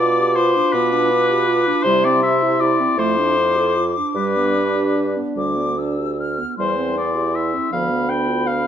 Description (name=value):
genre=classical, slow romantic movement for wind quintet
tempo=48-55 BPM (dotted quarters)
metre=6/8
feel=rubato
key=unclear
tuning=A4 = 439 Hz
part: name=silver concert flute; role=melody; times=0.0-8.7 s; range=B5 to F6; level=-24 LUFS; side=left 5 dB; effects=none
part: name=clear oboe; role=second line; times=0.0-8.7 s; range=B4 to G5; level=-20 LUFS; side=left 3 dB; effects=none
part: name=mellow clarinet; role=accompaniment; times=0.0-8.7 s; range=F3 to A4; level=-25 LUFS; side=right 9 dB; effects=none
part: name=warm French horn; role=accompaniment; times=0.0-8.7 s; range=B3 to F4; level=-25 LUFS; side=left 1 dB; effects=none
part: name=mellow bassoon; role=bass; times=0.0-8.7 s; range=D2 to C3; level=-22 LUFS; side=right 2 dB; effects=none
room=light reverb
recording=close, detailed microphones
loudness=-16 LUFS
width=side -9 dB against mid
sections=0.0-8.7 A section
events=none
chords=0.0 G7/B; 1.8 C; 3.0 Dm/F; 4.2 G; 6.6 C/E; 7.7 Bdim/D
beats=0.73 | 1.84 2.97 | 4.16 5.37 | 6.59 7.73